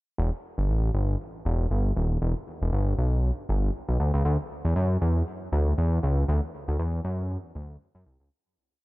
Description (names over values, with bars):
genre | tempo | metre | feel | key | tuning
early-eighties boogie funk | 118 BPM | 4/4 | swing 56% on 16ths | E minor | A4 = 443 Hz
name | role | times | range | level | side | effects
fat analog bass | solo | 0.2-8.3 s | D#1 to F#2 | -24 LUFS | equal | none
room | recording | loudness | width
little or no reverb | dry, close 1970s-style studio recording | -24 LUFS | side -20 dB against mid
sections
0.2-8.3 breakdown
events
fade-out 6.3-8.3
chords
none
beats
| 0.19 0.69 1.20 1.71 | 2.22 2.73 3.24 3.75 | 4.25 4.76 5.27 5.78 | 6.29 6.80 7.30 7.81